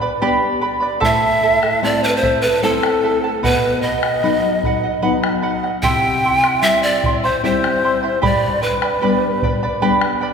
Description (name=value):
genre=andean folk, Andean ensemble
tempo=75 BPM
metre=3/4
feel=straight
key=unclear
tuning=A4 = 440 Hz
part: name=breathy mellow pan flute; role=melody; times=0.0-9.8 s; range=A4 to G5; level=-18 LUFS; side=equal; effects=none
part: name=charango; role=accompaniment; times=0.0-10.3 s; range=E4 to C6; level=-20 LUFS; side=right 3 dB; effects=none
part: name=nylon-string guitar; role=accompaniment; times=0.0-10.3 s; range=G2 to G4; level=-22 LUFS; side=left 4 dB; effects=none
part: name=bombo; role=percussion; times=0.8-10.2 s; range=none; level=-24 LUFS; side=equal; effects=none
room=wet church reverb, RT60 3.2 s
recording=recorded in a church or concert hall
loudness=-14 LUFS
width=side -6 dB against mid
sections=0.0-10.3 A section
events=none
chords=0.0 G; 1.0 Am; 3.4 B; 5.8 C; 8.2 G